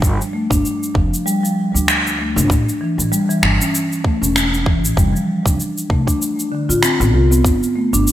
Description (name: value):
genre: organic downtempo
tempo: 97 BPM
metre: 4/4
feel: swing 57% on 16ths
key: G mixolydian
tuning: A4 = 443 Hz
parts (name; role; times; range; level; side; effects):
- marimba with soft mallets; arpeggios; 0.0-8.1 s; D3 to F4; -18 LUFS; equal; vintage 12-bit sampler grit, digital delay
- upright bass; bass; 0.0-8.0 s; E1 to D2; -19 LUFS; equal; none
- electronic kick drum; drums; 0.0-7.6 s; none; -17 LUFS; equal; none
- electronic shaker and finger snaps; drums; 0.0-8.1 s; none; -20 LUFS; equal; gated reverb
room: moderate lush hall reverb, RT60 2.6 s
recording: bright 1980s-style digital production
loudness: -14 LUFS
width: side -13 dB against mid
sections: 0.0-8.1 A section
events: none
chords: 0.0 Gsus2; 2.5 A; 5.0 F; 7.4 Gsus2